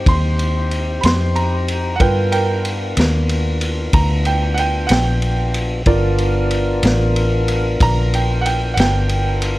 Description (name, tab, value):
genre	slow blues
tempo	62 BPM (dotted quarters)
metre	12/8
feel	straight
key	unclear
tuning	A4 = 440 Hz
part	warm upright piano	accompaniment	0.0-9.6 s	Eb4 to D5	-26 LUFS	right 2 dB	none
part	tonewheel organ	sustained chords	0.0-9.6 s	B3 to C5	-24 LUFS	left 2 dB	overdrive, slow rotary speaker
part	vintage muted fingered electric bass	bass	0.0-9.6 s	G1 to G2	-18 LUFS	equal	none
part	bright upright piano	second line	0.1-9.4 s	A#4 to C6	-22 LUFS	right 3 dB	tape echo
part	vintage drum kit	drums	0.1-9.6 s	kick drum, ride cymbal, snare drum	-21 LUFS	equal	none
room	little or no reverb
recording	dark, warm production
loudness	-15 LUFS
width	side -17 dB against mid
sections	0.0-9.6 A section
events	upright piano solo 0.0-9.6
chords	0.0 Cm; 2.0 G7#9